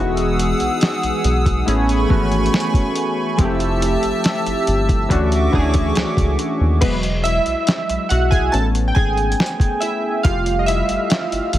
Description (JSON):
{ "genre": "contemporary R&B", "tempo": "70 BPM", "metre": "4/4", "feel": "straight", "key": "E major", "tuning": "A4 = 441 Hz", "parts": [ { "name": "warm analog keys", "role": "accompaniment", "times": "0.0-11.6 s", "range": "E3 to A5", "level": "-20 LUFS", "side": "equal", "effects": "chorus" }, { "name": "hollow soft pad", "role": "sustained chords", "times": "0.0-6.8 s", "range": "A3 to E6", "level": "-22 LUFS", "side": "right 1 dB", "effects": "chorus" }, { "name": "round analog bass", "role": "bass", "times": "0.0-11.6 s", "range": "E1 to D#2", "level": "-20 LUFS", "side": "equal", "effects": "none" }, { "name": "dusty soul sampler-style drum kit", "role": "drums", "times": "0.2-11.6 s", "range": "crash cymbal, hi-hat, kick drum, snare drum", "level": "-20 LUFS", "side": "equal", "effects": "none" } ], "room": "digital ambience", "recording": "heavily compressed radio sound", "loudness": "-15 LUFS", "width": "side -13 dB against mid", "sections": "0.0-6.8 A section; 6.8-11.6 A section", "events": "synth keys solo 6.8-11.6", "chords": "0.0 Emaj9; 1.7 Amaj9; 3.4 Fmaj9; 5.1 Dmaj9; 6.8 Emaj9; 8.5 Amaj9; 10.2 Fmaj9" }